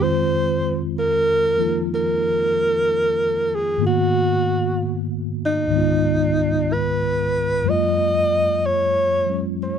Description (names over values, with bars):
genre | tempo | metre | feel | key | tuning
jazz | 62 BPM | 4/4 | swing 68% on 8ths | unclear | A4 = 435 Hz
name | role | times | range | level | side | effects
breathy alto saxophone | melody | 0.0-9.8 s | Eb4 to Eb5 | -19 LUFS | equal | none
mellow tine electric piano | accompaniment | 0.0-9.8 s | Db2 to Gb4 | -22 LUFS | equal | medium stereo tremolo
room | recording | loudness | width
light reverb | close, detailed microphones | -18 LUFS | side -8 dB against mid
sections
0.0-9.8 A section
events
none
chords
0.0 Fm7; 3.8 Abm7; 5.7 Db9; 7.7 Gbmaj9